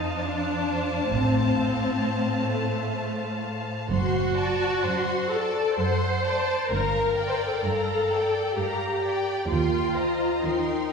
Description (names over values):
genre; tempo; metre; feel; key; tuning
classical, slow romantic movement for string orchestra; 64 BPM; 3/4; rubato; unclear; A4 = 438 Hz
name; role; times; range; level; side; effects
rich studio violin section; melody; 0.0-10.9 s; G5 to C6; -33 LUFS; left 3 dB; none
rich studio violin section; second line; 0.0-10.9 s; Bb4 to A5; -31 LUFS; left 2 dB; none
rich studio viola section; accompaniment; 0.0-10.9 s; A3 to C5; -26 LUFS; left 1 dB; none
rich studio cello section; bass; 0.0-10.9 s; Eb2 to A2; -30 LUFS; right 1 dB; none
rich studio double bass section; bass; 1.1-10.3 s; F#1 to Eb2; -30 LUFS; right 2 dB; none
room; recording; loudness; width
wet scoring stage reverb, RT60 1.8 s; heard from further back in the room; -23 LUFS; side -5 dB against mid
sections
0.0-10.9 A section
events
none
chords
0.0 F; 1.1 F/A; 3.9 D7/F#; 6.7 Gm7; 9.5 Cm7/Eb